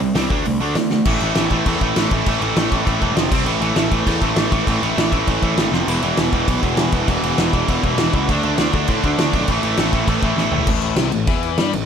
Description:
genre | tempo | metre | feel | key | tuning
punk rock | 200 BPM | 4/4 | straight | A minor | A4 = 441 Hz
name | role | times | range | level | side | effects
distorted electric guitar | riff | 0.0-11.9 s | E2 to D4 | -22 LUFS | left 14 dB | overdrive
distorted electric guitar | riff | 0.0-10.7 s | E2 to D4 | -21 LUFS | right 12 dB | overdrive
fuzz picked electric bass | bass | 0.0-11.9 s | E1 to A2 | -23 LUFS | equal | overdrive
loose indie drum kit | drums | 0.2-11.8 s | crash cymbal, hi-hat, kick drum, snare drum, splash cymbal, toms | -20 LUFS | equal | none
room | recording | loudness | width
light reverb | none | -16 LUFS | side -7 dB against mid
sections
0.0-1.1 A section; 1.1-10.7 B section; 10.7-11.9 C section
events
drum fill 0.9, 5.7, 10.4-10.7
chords
0.3 D5; 1.1 A5; 3.2 F5; 3.3 C5; 3.5 A5; 5.7 F5; 5.9 E5; 8.3 D5; 9.5 A5; 10.7 Am

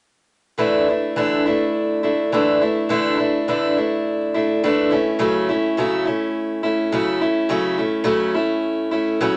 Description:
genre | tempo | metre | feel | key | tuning
rock | 104 BPM | 4/4 | straight | unclear | A4 = 440 Hz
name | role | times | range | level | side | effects
picked steel-string acoustic guitar | accompaniment | 0.6-9.4 s | C#3 to E4 | -20 LUFS | equal | none
room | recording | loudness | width
moderate large studio reverb, RT60 0.9 s | nothing above 10.9 kHz | -20 LUFS | mono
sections
0.6-9.4 A section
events
none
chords
0.6 Dsus2; 4.9 A6/C#

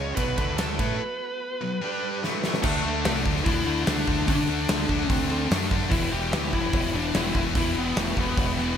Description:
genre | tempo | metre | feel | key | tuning
hard rock | 146 BPM | 4/4 | straight | unclear | A4 = 442 Hz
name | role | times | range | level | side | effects
bluesy overdriven lead guitar | melody | 0.0-8.8 s | A3 to C#5 | -29 LUFS | equal | distortion, digital delay
mellow tonewheel organ | sustained chords | 0.0-8.8 s | G3 to G5 | -40 LUFS | right 2 dB | none
high-gain distorted guitar | riff | 0.0-8.8 s | E2 to A4 | -30 LUFS | left 10 dB | distortion
overdriven semi-hollow guitar | riff | 0.0-2.6 s | A2 to A4 | -34 LUFS | right 13 dB | none
growling fingered electric bass | bass | 0.0-8.8 s | E1 to D3 | -30 LUFS | right 1 dB | overdrive
gated 80s drum kit | drums | 0.2-8.6 s | crash cymbal, hi-hat, kick drum, ride cymbal, snare drum | -27 LUFS | equal | none
scooped high-gain guitar | riff | 2.6-8.8 s | E2 to D4 | -32 LUFS | equal | distortion
room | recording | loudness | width
light reverb, small room ambience | bright 1980s-style digital production | -22 LUFS | side -8 dB against mid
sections
0.0-2.6 A section; 2.6-8.8 B section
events
break 1.0-2.6; drum fill 2.2-2.6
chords
0.2 B5; 0.4 D5; 0.8 B5; 1.8 G5; 2.2 A5; 2.6 D; 5.9 Em

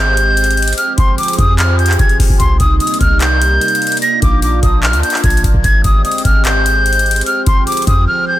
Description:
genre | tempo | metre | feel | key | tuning
hip hop, trap | 148 BPM | 4/4 | half-time | unclear | A4 = 442 Hz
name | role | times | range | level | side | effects
breathy jazz flute | melody | 0.0-8.4 s | C6 to Bb6 | -14 LUFS | equal | low-pass filter, ping-pong delay
sweeping resonant pad | sustained chords | 0.0-8.4 s | C3 to Ab4 | -21 LUFS | right 1 dB | chorus, phaser
warm 808-style bass | bass | 0.0-8.1 s | F1 to F2 | -14 LUFS | equal | none
booming analog drum machine | drums | 0.2-8.1 s | handclaps, hi-hat, kick drum | -15 LUFS | equal | none
room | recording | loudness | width
little or no reverb | dense, heavily limited modern master | -10 LUFS | side -14 dB against mid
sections
0.0-8.4 A section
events
drums muted 8.1-8.4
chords
0.0 Abmaj7; 0.8 Fmadd9; 2.4 Cm7; 4.0 Bb; 5.6 Abmaj7; 7.3 Fmadd9

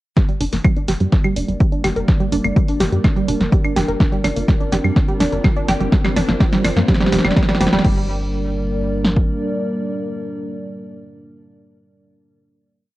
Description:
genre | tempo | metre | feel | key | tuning
melodic techno | 125 BPM | 4/4 | straight | G minor | A4 = 437 Hz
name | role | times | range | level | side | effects
dark analog pad | sustained chords | 1.1-12.4 s | G3 to D5 | -25 LUFS | equal | chorus, sidechain pumping, cassette tape
tight sequenced synth | arpeggios | 0.2-8.1 s | G3 to Bb4 | -22 LUFS | right 2 dB | chorus, phaser, sidechain pumping, cassette tape, analog delay
punchy analog drum machine | drums | 0.2-9.3 s | kick drum, snare drum | -16 LUFS | equal | overdrive, cassette tape
punchy analog drum machine | drums | 0.2-7.9 s | claves, crash cymbal, hi-hat, snare drum | -21 LUFS | equal | overdrive, cassette tape
tight sequencer bass | bass | 0.4-9.2 s | F1 to G2 | -22 LUFS | equal | sidechain pumping
room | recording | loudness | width
light reverb | home recording on cassette | -15 LUFS | side -17 dB against mid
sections
0.2-7.8 build; 7.8-11.7 final chord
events
build-up 0.2-7.8; drum fill 0.2-7.8; filter sweep on synth arpeggio sound 0.2-7.8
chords
0.2 Gm; 4.0 Bbadd9; 7.8 Gm

